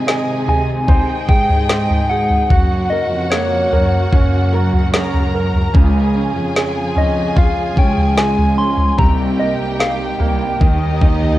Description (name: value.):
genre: pop ballad.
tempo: 74 BPM.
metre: 4/4.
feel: straight.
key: unclear.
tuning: A4 = 440 Hz.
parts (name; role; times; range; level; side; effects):
warm studio violin section; second line; 0.0-11.4 s; Eb4 to Bb5; -25 LUFS; equal; cassette tape, tape echo.
clear baby grand piano; accompaniment; 0.0-11.4 s; C3 to Eb5; -23 LUFS; right 7 dB; cassette tape.
dark studio string section; sustained chords; 0.0-11.4 s; C3 to G4; -28 LUFS; left 1 dB; cassette tape.
flamenco guitar; arpeggios; 0.0-11.4 s; Ab2 to Db5; -31 LUFS; left 8 dB; cassette tape.
warm studio cello section; bass; 0.0-11.4 s; C2 to C3; -19 LUFS; equal; none.
smooth R&B drum kit; drums; 0.1-11.4 s; kick drum, snare drum, toms; -15 LUFS; equal; cassette tape.
soft struck synth lead; melody; 0.5-11.4 s; Db5 to C6; -20 LUFS; left 1 dB; chorus, cassette tape.
room: studio reverb.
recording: home recording on cassette.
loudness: -13 LUFS.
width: side -15 dB against mid.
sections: 0.0-11.4 A section.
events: none.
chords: 0.0 Ab; 2.5 Gb; 5.7 Db; 9.0 Cm7; 10.6 Eb.